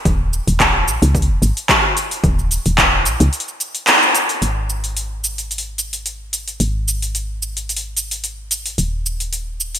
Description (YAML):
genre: organic downtempo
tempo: 110 BPM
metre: 4/4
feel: swing 54% on 16ths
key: unclear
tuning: A4 = 438 Hz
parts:
  - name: woody FM bass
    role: bass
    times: 0.1-9.8 s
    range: D#1 to C#2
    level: -20 LUFS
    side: equal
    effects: none
  - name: deep house drum kit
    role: drums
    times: 0.1-9.8 s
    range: cabasa, handclaps, hi-hat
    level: -17 LUFS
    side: equal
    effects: overdrive, gated reverb
  - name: electronic kick drum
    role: drums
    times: 0.1-2.9 s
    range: none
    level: -20 LUFS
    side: equal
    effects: overdrive
room: moderate lush hall reverb, RT60 2.1 s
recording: bright 1980s-style digital production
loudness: -15 LUFS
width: side -9 dB against mid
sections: 0.0-4.4 A section; 4.4-9.8 B section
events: kick drops out 3.3-4.4; band accent 3.9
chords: none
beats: | 0.06 0.60 1.15 1.69 | 2.24 2.78 3.33 3.87 | 4.42 4.96 5.51 6.05 | 6.60 7.15 7.69 8.24 | 8.78 9.33